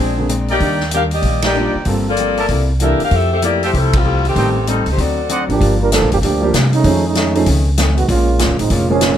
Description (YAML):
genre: jazz, big band swing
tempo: 193 BPM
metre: 4/4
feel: swing 63% on 8ths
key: unclear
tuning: A4 = 441 Hz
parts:
  - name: mellow saxophone section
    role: melody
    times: 0.0-5.5 s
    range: Eb3 to F5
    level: -18 LUFS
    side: left 3 dB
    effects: none
  - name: archtop guitar, miked and amplified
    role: accompaniment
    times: 0.0-9.2 s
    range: F2 to A4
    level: -23 LUFS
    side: left 4 dB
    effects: none
  - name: upright bass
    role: bass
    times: 0.0-9.2 s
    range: F1 to C3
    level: -17 LUFS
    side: equal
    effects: none
  - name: warm baby grand piano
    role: accompaniment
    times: 0.2-9.0 s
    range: D3 to A4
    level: -20 LUFS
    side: right 2 dB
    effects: none
  - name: swinging big-band drum kit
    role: drums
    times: 0.3-9.1 s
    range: hi-hat, kick drum, ride cymbal, snare drum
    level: -21 LUFS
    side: equal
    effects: none
  - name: warm trumpet section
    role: stabs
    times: 0.5-5.4 s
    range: Eb4 to A5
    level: -22 LUFS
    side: right 3 dB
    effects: none
  - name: clear trombone section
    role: second line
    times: 5.5-9.2 s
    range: Eb3 to Bb4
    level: -17 LUFS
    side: right 4 dB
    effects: none
room: light reverb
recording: none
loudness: -13 LUFS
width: side -10 dB against mid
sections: 0.0-5.6 A section; 5.6-9.2 B section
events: band accent 1.4, 3.9; trombone section solo 5.6-9.2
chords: 0.0 Bb9; 0.6 Ebmaj7; 1.9 Gm11; 2.5 C13; 3.1 Fmaj9; 4.4 Am7b5; 5.0 D7b9; 5.6 Gm7; 6.8 F7alt; 8.1 Bbm7